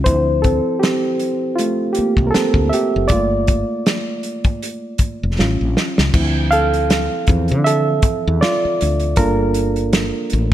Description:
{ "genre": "R&B, neo-soul", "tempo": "79 BPM", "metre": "4/4", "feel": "swing 56% on 16ths", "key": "D minor", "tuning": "A4 = 436 Hz", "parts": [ { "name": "reed electric piano", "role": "accompaniment", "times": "0.0-10.5 s", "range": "E3 to F5", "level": "-18 LUFS", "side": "right 2 dB", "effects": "none" }, { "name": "woody fretless electric bass", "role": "bass", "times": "0.0-10.5 s", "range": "F1 to D3", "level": "-19 LUFS", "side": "left 1 dB", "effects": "none" }, { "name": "warm soul drum kit", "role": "drums", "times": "0.1-10.5 s", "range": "crash cymbal, hi-hat, kick drum, snare drum", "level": "-18 LUFS", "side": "equal", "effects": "none" } ], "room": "light reverb, small room ambience", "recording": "none", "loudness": "-15 LUFS", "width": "side -12 dB against mid", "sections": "0.0-6.1 A section; 6.1-10.5 B section", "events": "reed electric piano solo 0.0-6.1, 6.1-10.5; drum fill 5.4-6.1", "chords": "0.1 Dm9; 3.1 Gm9; 5.4 Aaug7; 6.1 Dm9; 9.2 Gm9" }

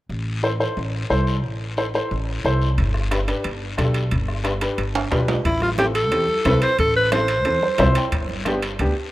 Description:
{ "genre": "latin, cumbia", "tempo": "180 BPM", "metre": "4/4", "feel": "straight", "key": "A minor", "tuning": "A4 = 441 Hz", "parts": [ { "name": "upright bass", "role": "bass", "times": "0.1-8.9 s", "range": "G1 to E2", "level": "-23 LUFS", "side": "equal", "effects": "none" }, { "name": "guiro", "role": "percussion", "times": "0.1-9.1 s", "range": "none", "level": "-35 LUFS", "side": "left 4 dB", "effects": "none" }, { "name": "warm upright piano", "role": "accompaniment", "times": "0.4-8.9 s", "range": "B3 to G5", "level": "-24 LUFS", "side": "left 1 dB", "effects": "none" }, { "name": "bombo", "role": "percussion", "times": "2.8-8.6 s", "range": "none", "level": "-28 LUFS", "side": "left 1 dB", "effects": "none" }, { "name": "timbales", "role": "percussion", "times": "2.8-9.0 s", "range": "none", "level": "-29 LUFS", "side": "right 4 dB", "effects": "none" }, { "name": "bright alto saxophone", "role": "melody", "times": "5.5-7.9 s", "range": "E4 to C5", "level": "-20 LUFS", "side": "equal", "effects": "none" }, { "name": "congas", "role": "percussion", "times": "5.5-9.0 s", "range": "none", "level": "-33 LUFS", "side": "right 4 dB", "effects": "none" } ], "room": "light reverb", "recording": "rough home demo mix", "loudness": "-18 LUFS", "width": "side -16 dB against mid", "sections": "0.1-5.5 A section; 5.5-9.1 B section", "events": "drum fill 4.9-5.5; upright piano fill 7.5-8.1", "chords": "0.1 Am; 2.8 G; 5.5 Am; 8.1 G" }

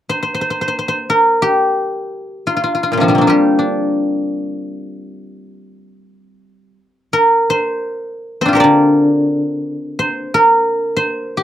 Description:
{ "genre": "chinese traditional, Chinese solo plucked strings", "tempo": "free time", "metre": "none", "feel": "none", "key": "G yu mode", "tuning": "A4 = 436 Hz", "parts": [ { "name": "guzheng", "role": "solo", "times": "0.1-11.4 s", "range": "Bb2 to D5", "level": "-14 LUFS", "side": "equal", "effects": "none" } ], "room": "light reverb", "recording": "dry, close 1970s-style studio recording", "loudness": "-13 LUFS", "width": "side -11 dB against mid", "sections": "0.0-11.4 A section", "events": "none", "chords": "none" }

